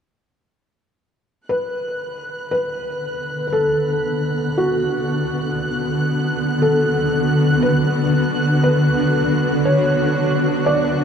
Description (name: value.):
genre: ambient.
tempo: 59 BPM.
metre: 3/4.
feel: straight.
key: B minor.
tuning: A4 = 440 Hz.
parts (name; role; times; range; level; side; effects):
felt-muted upright piano; melody; 1.5-11.0 s; F#4 to D5; -21 LUFS; equal; shimmer reverb, ping-pong delay.
granular cloud pad; sustained chords; 3.0-11.0 s; D3 to F#4; -18 LUFS; equal; built-in reverb, shimmer reverb.
dark studio violin section; texture; 1.5-11.0 s; F#6; -27 LUFS; right 1 dB; shimmer reverb.
room: wet huge ambient reverb, RT60 7.8 s.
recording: dark, warm production.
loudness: -17 LUFS.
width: side -7 dB against mid.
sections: 1.5-11.0 A section.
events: none.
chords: 1.5 Bm7.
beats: | 1.52 2.54 3.56 | 4.57 5.59 6.61 | 7.62 8.64 9.66 | 10.67.